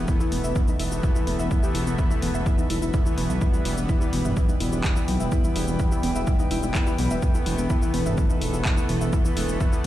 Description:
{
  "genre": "melodic techno",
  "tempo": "126 BPM",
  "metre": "4/4",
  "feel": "straight",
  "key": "unclear",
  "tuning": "A4 = 440 Hz",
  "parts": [
    { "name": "warbly dusty pluck", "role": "arpeggios", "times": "0.0-9.9 s", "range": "B3 to E5", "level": "-31 LUFS", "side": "left 1 dB", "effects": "chorus, cassette tape, sidechain pumping, digital delay" },
    { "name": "brassy analog pad", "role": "stabs", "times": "0.0-9.9 s", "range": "E3 to B3", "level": "-29 LUFS", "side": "left 1 dB", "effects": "chorus, cassette tape, sidechain pumping, digital delay" },
    { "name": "swelling detuned saw bass", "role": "bass", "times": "0.0-9.9 s", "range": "E1 to B1", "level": "-26 LUFS", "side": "equal", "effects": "sidechain pumping" },
    { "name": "dark chamber string section", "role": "texture", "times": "0.0-9.9 s", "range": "E4 to G5", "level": "-35 LUFS", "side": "right 2 dB", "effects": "sidechain pumping" },
    { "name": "electronic kick drum", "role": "drums", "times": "0.1-9.7 s", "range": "none", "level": "-22 LUFS", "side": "equal", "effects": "overdrive" },
    { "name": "punchy analog drum machine", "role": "drums", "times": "0.1-9.9 s", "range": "handclaps, hi-hat, shaker, toms", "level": "-34 LUFS", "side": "left 1 dB", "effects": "overdrive" }
  ],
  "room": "little or no reverb",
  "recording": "played on a big sound system in a bare room, large studio reverb",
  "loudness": "-21 LUFS",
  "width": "side -13 dB against mid",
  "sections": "0.0-9.9 A section",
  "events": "fade-in on string section 0.0-9.9",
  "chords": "0.0 Asus2/E"
}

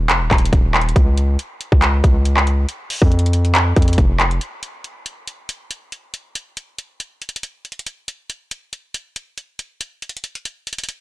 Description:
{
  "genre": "hip hop, trap",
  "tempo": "139 BPM",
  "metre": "4/4",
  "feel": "half-time",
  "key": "unclear",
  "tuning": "A4 = 440 Hz",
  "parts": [
    { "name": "hard-hitting 808-style bass", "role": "bass", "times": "0.0-4.4 s", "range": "Eb1 to F2", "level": "-16 LUFS", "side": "equal", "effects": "none" },
    { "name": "trap drum kit", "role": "drums", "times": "0.1-11.0 s", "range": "handclaps, hi-hat, kick drum", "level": "-17 LUFS", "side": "equal", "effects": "vintage 12-bit sampler grit" }
  ],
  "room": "digital ambience",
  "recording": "blown-out, overdriven recording, overdrive",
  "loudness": "-14 LUFS",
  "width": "side -17 dB against mid",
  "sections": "0.0-4.4 A section; 4.4-11.0 B section",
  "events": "none",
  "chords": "none"
}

